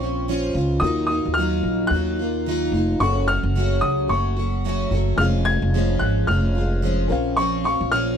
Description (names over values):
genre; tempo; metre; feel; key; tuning
acoustic pop; 110 BPM; 4/4; swing 60% on 16ths; Db major; A4 = 440 Hz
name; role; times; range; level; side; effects
clear upright piano; melody; 0.0-8.2 s; Db6 to Ab6; -25 LUFS; left 1 dB; none
felt-muted upright piano; accompaniment; 0.0-8.2 s; C4 to Gb5; -31 LUFS; left 6 dB; none
picked plugged-in steel-string acoustic guitar; accompaniment; 0.0-8.2 s; Gb2 to Gb4; -24 LUFS; right 1 dB; double-tracked left and right
upright bass; bass; 0.0-8.2 s; F1 to Eb2; -23 LUFS; equal; none
room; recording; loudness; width
little or no reverb; dry, close 1970s-style studio recording; -19 LUFS; side -8 dB against mid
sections
0.0-8.2 A section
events
none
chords
0.0 Bbmadd9; 0.8 Ebmadd9; 3.0 Gbm; 5.2 Db/F; 7.1 Bbmadd9